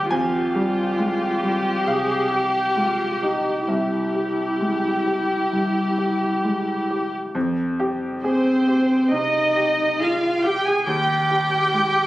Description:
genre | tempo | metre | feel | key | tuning
neoclassical piano and strings | 67 BPM | 4/4 | uneven beats, rubato | F minor | A4 = 436 Hz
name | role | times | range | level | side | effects
muted chamber violin section | melody | 0.0-12.1 s | G4 to Ab5 | -24 LUFS | left 1 dB | none
muted cello | second line | 0.0-12.1 s | C4 to Ab4 | -22 LUFS | right 1 dB | none
bright grand piano | accompaniment | 0.0-12.1 s | C2 to Ab5 | -24 LUFS | equal | none
room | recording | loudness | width
moderate scoring stage reverb, RT60 1.8 s | recorded on a phone in the room, club reverb | -19 LUFS | side -16 dB against mid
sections
0.0-7.4 A section; 7.4-12.1 A section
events
none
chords
0.1 Fmadd9; 3.7 C; 7.4 Fmadd9; 10.9 Cm/Eb (rootless)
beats
| 0.11 0.99 1.87 2.77 | 3.69 4.61 5.53 6.44 | 7.35 8.24 9.12 10.00 | 10.87 11.73

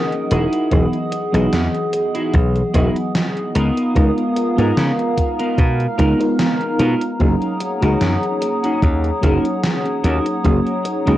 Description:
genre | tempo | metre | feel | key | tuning
vaporwave | 74 BPM | 4/4 | swing 54% on 16ths | F# major | A4 = 441 Hz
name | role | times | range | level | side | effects
FM electric piano with soft pad layer | accompaniment | 0.0-11.2 s | E3 to D#5 | -20 LUFS | equal | lush chorus, cassette tape, tape echo
warbly tape-like pad | sustained chords | 0.0-11.2 s | B3 to E#6 | -24 LUFS | left 1 dB | chorus, built-in reverb, vintage 12-bit sampler grit, cassette tape
gated 80s digital drum machine | drums | 0.1-11.2 s | hi-hat, snare drum | -24 LUFS | right 1 dB | gated reverb, gated reverb snare, cassette tape
clean electric guitar | riff | 0.3-11.2 s | B3 to A#4 | -24 LUFS | equal | analog chorus, cassette tape, tape echo
slap bass | bass | 0.3-11.2 s | E1 to C#3 | -18 LUFS | equal | tube saturation
electronic kick drum | drums | 0.7-10.6 s | none | -17 LUFS | equal | cassette tape
room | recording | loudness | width
light reverb | home recording on cassette | -15 LUFS | side -14 dB against mid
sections
0.0-11.2 A section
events
none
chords
0.3 Emaj9; 3.6 C#13; 7.2 F#6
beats
| 0.72 1.53 2.34 3.15 | 3.96 4.77 5.58 6.39 | 7.20 8.01 8.82 9.63 | 10.45

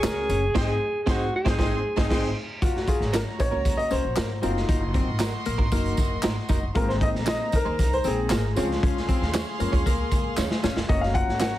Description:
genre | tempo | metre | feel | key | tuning
uptempo 1960s-style soul | 116 BPM | 4/4 | straight | Ab mixolydian | A4 = 441 Hz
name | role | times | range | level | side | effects
breathy alto saxophone | melody | 0.0-2.3 s | Gb4 to Ab4 | -27 LUFS | right 1 dB | none
warm studio violin section | second line | 0.0-11.6 s | Eb4 to Db6 | -35 LUFS | right 2 dB | slapback echo
warm upright piano | accompaniment | 0.0-11.6 s | F3 to Gb5 | -28 LUFS | left 1 dB | none
hollow-body jazz guitar | riff | 0.0-11.3 s | Bb3 to Gb4 | -33 LUFS | left 7 dB | none
direct-recorded clean electric guitar | stabs | 0.0-11.5 s | Bb3 to Db5 | -33 LUFS | right 8 dB | ensemble chorus
upright bass | bass | 0.0-11.5 s | F1 to F2 | -29 LUFS | equal | none
raw garage drum kit | drums | 0.0-11.5 s | crash cymbal, hi-hat, kick drum, snare drum | -26 LUFS | equal | none
handclaps and tambourine | percussion | 0.0-11.5 s | none | -37 LUFS | left 1 dB | none
mellow horn section | second line | 0.6-2.2 s | Ab3 to C5 | -37 LUFS | equal | slapback echo
room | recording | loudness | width
light reverb | heavily compressed radio sound | -22 LUFS | side -14 dB against mid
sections
0.0-2.6 A section; 2.6-11.6 B section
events
band accent 0.6-2.6; upright piano solo 2.6-11.6; drum fill 10.4-10.9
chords
0.0 Gb; 0.6 Ab; 2.6 Gb; 4.4 Ebm/Gb; 6.8 Abadd9; 8.6 Db; 10.9 Gb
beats
0.03 | 0.55 1.07 1.58 2.10 | 2.62 3.14 3.65 4.17 | 4.69 5.21 5.72 6.24 | 6.76 7.28 7.79 8.31 | 8.83 9.34 9.86 10.38 | 10.89 11.41

